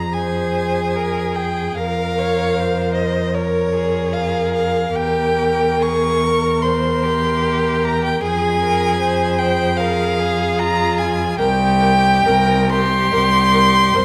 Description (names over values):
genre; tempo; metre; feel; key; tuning
classical, slow romantic movement for string quartet; 75 BPM; 4/4; uneven beats, rubato; F minor; A4 = 440 Hz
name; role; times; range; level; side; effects
rich violin; second line; 0.0-14.0 s; Db5 to Db6; -22 LUFS; equal; none
rich viola; accompaniment; 0.0-14.0 s; Ab4 to Bb4; -24 LUFS; equal; none
rich cello; bass; 0.0-14.0 s; C2 to F2; -23 LUFS; equal; none
warm violin; melody; 0.1-14.0 s; F4 to Db5; -27 LUFS; equal; none
room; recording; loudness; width
moderate recital hall reverb, RT60 1.4 s; none; -17 LUFS; mono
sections
0.0-14.0 A section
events
none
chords
0.0 Fm; 1.8 Bbm/F; 4.9 C7/E; 8.2 Fm; 11.4 C5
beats
0.14 0.96 | 1.77 2.58 3.35 4.13 | 4.94 5.81 6.63 7.44 | 8.23 9.01 9.80 10.61 | 11.41 12.27 13.15 13.96